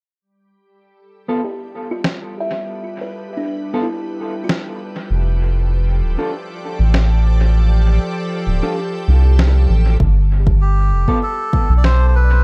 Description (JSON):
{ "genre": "ambient dub", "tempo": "98 BPM", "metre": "4/4", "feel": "straight", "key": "G mixolydian", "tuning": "A4 = 441 Hz", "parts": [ { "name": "soft additive organ-like pad", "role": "sustained chords", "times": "1.0-12.4 s", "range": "F3 to G5", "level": "-31 LUFS", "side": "equal", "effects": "ensemble chorus, built-in reverb" }, { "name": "mellow electric guitar", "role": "stabs", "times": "1.3-11.2 s", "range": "B3 to A4", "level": "-29 LUFS", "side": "equal", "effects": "low-pass filter, dub echo" }, { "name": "buzzing kalimba", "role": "arpeggios", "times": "1.4-10.1 s", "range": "D4 to E5", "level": "-31 LUFS", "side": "equal", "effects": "low-pass filter, dub echo" }, { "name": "electronic snare drum", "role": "drums", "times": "2.0-12.0 s", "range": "none", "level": "-26 LUFS", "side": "equal", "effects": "dub echo" }, { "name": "round analog bass", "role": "bass", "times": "5.1-12.4 s", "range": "D1 to C2", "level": "-15 LUFS", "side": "equal", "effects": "none" }, { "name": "electronic kick drum", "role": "drums", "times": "10.0-11.7 s", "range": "none", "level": "-20 LUFS", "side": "equal", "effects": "none" }, { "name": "melodica", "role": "melody", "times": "10.6-12.4 s", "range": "G4 to D5", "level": "-23 LUFS", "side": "equal", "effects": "dub echo" } ], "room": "digital ambience", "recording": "echo-heavy mix", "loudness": "-17 LUFS", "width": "mono", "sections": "0.2-10.0 A section; 10.0-12.4 B section", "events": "fade-in on ambient pad 0.2-10.0", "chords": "0.2 G9; 5.1 F6; 10.0 Gadd9" }